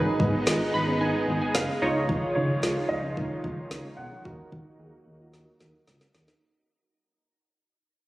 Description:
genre	synth-pop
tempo	111 BPM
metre	4/4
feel	straight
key	unclear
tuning	A4 = 442 Hz
part	warm baby grand piano	melody	0.0-5.8 s	C#5 to G#5	-35 LUFS	equal	low-pass filter, shimmer reverb
part	warm analog keys	accompaniment	0.0-6.4 s	D#4 to B5	-29 LUFS	right 1 dB	chorus, low-pass filter, shimmer reverb
part	lush unison pad	sustained chords	0.0-6.4 s	D#3 to E#4	-31 LUFS	right 1 dB	chorus, low-pass filter, shimmer reverb
part	soft round pluck	arpeggios	0.0-6.4 s	C#4 to G#4	-34 LUFS	equal	chorus, low-pass filter, tape echo, shimmer reverb
part	smooth synth bass	bass	0.0-6.3 s	F#1 to D#3	-31 LUFS	equal	none
part	deep house drum kit	drums	0.2-6.4 s	kick drum, snare drum	-30 LUFS	equal	none
room	moderate lush hall reverb, RT60 2.3 s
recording	recorded on a phone in the room, club reverb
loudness	-24 LUFS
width	side -17 dB against mid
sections	0.0-6.4 A section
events	fade-out 0.0-6.4; filter sweep 0.0-6.4; synth keys fill 0.5-2.1; drum fill 5.3-6.4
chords	0.0 G#m; 1.8 C#add9; 4.3 D#m

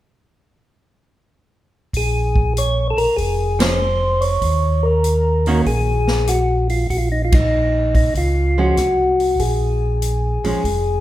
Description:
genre	soul jazz organ trio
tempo	97 BPM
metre	4/4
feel	swing 68% on 8ths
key	Bb minor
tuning	A4 = 440 Hz
part	mellow tonewheel organ	bass	1.9-11.0 s	F1 to Eb2	-19 LUFS	equal	slow rotary speaker
part	swinging big-band drum kit	drums	1.9-10.8 s	hi-hat, kick drum, ride cymbal, rim click, snare drum	-21 LUFS	equal	none
part	percussive tonewheel organ	melody	2.0-11.0 s	Eb4 to Db5	-19 LUFS	left 1 dB	slow rotary speaker
part	archtop guitar, miked and amplified	accompaniment	3.6-10.6 s	Eb3 to Gb4	-22 LUFS	right 2 dB	none
room	moderate recital hall reverb, RT60 1.4 s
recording	recorded in a church or concert hall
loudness	-15 LUFS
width	side -14 dB against mid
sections	1.9-11.0 A section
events	band accent 3.5-3.8, 7.2-7.5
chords	1.9 Bbm7; 4.4 Ebm7; 6.9 Bbm7

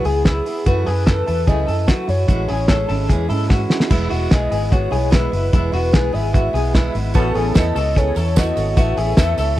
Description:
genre	jangly indie pop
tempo	148 BPM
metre	4/4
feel	straight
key	unclear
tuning	A4 = 441 Hz
part	warbly nostalgic lead	melody	0.0-9.6 s	G#4 to E5	-24 LUFS	left 2 dB	chorus
part	picked steel-string acoustic guitar	accompaniment	0.0-9.6 s	F#2 to C#5	-25 LUFS	right 6 dB	none
part	electric guitar through a small old amp	arpeggios	0.0-9.6 s	E4 to A4	-25 LUFS	left 3 dB	tremolo, tape echo
part	vintage muted fingered electric bass	bass	0.0-9.6 s	E1 to F#3	-20 LUFS	equal	none
part	cloth-damped thuddy drum kit	drums	0.1-9.5 s	crash cymbal, hi-hat, kick drum, snare drum	-16 LUFS	equal	none
part	warbly lo-fi synth keys	accompaniment	7.1-9.6 s	B3 to A4	-27 LUFS	left 2 dB	chorus
part	tambourine	percussion	7.1-9.5 s	none	-38 LUFS	right 12 dB	none
room	small room ambience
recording	dry, close 1970s-style studio recording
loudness	-15 LUFS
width	side -14 dB against mid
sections	0.0-3.9 A section; 3.9-9.6 B section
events	drum fill 3.5-3.9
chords	0.0 Eadd9; 0.7 F#m7; 2.3 Amaj7; 3.9 E; 7.2 Aadd9

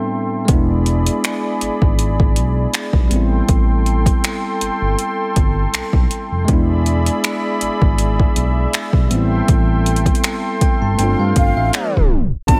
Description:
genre	contemporary R&B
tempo	80 BPM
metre	4/4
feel	swing 54% on 16ths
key	A minor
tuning	A4 = 444 Hz
part	bell-like tine electric piano	accompaniment	0.0-12.6 s	A2 to A5	-24 LUFS	equal	none
part	warm analog pad	sustained chords	0.0-12.6 s	G4 to C6	-26 LUFS	equal	chorus, sidechain pumping
part	smooth synth bass	bass	0.5-12.6 s	E1 to G2	-20 LUFS	equal	none
part	smooth R&B drum kit	drums	0.5-12.6 s	finger snaps, hi-hat, kick drum	-19 LUFS	equal	overdrive
part	breathy mellow jazz flute	melody	11.4-12.6 s	F5 to A5	-23 LUFS	equal	none
room	digital ambience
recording	tape stop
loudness	-17 LUFS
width	mono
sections	0.0-12.5 A section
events	tine electric piano fill 10.2-12.5; tape stop 11.7-12.5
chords	0.5 E7; 3.1 Am7; 6.5 E7; 9.1 Am7; 11.0 G9sus4

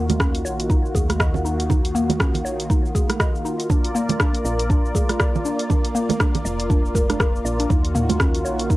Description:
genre	afro house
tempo	120 BPM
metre	4/4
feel	swing 59% on 16ths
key	Eb minor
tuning	A4 = 439 Hz
part	warm analog pad	sustained chords	0.0-8.8 s	Eb3 to D5	-26 LUFS	equal	chorus, sidechain pumping, cassette tape
part	mallet-like synth pluck	arpeggios	0.0-8.8 s	Bb3 to Eb5	-27 LUFS	left 1 dB	chorus, sidechain pumping, cassette tape, tape echo
part	woody FM bass	bass	0.0-8.8 s	F1 to Eb2	-27 LUFS	equal	sidechain pumping
part	deep house drum kit	drums	0.1-8.8 s	hi-hat, rim click, shaker, toms	-26 LUFS	equal	none
part	congas	percussion	0.1-8.2 s	none	-26 LUFS	right 6 dB	none
part	electronic kick drum	drums	0.2-8.8 s	none	-20 LUFS	equal	none
room	light reverb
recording	home recording on cassette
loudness	-18 LUFS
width	side -18 dB against mid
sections	0.0-8.8 A section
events	none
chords	0.0 Ebm9; 3.7 Bb; 7.7 Ebm9

